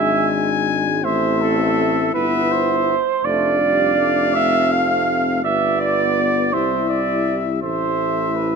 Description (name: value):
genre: classical, brass quintet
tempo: 55 BPM (dotted quarters)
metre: 6/8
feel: straight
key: unclear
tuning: A4 = 440 Hz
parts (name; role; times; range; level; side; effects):
- bright trumpet; melody; 0.0-8.6 s; D5 to G#5; -23 LUFS; left 13 dB; none
- warm flugelhorn; second line; 0.0-8.6 s; A4 to F5; -20 LUFS; right 7 dB; none
- breathy French horn; accompaniment; 0.0-8.6 s; B3 to E4; -26 LUFS; left 6 dB; none
- warm trombone; accompaniment; 0.0-8.6 s; G3 to B3; -28 LUFS; right 2 dB; none
- warm bass trombone; bass; 0.0-8.6 s; F1 to C2; -23 LUFS; equal; none
room: moderate concert hall reverb, RT60 1.9 s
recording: none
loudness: -16 LUFS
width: side -5 dB against mid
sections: 0.0-8.6 A section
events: none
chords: 0.0 E7; 1.0 Am; 3.2 Dm/F; 5.4 G; 6.5 C; 7.6 Am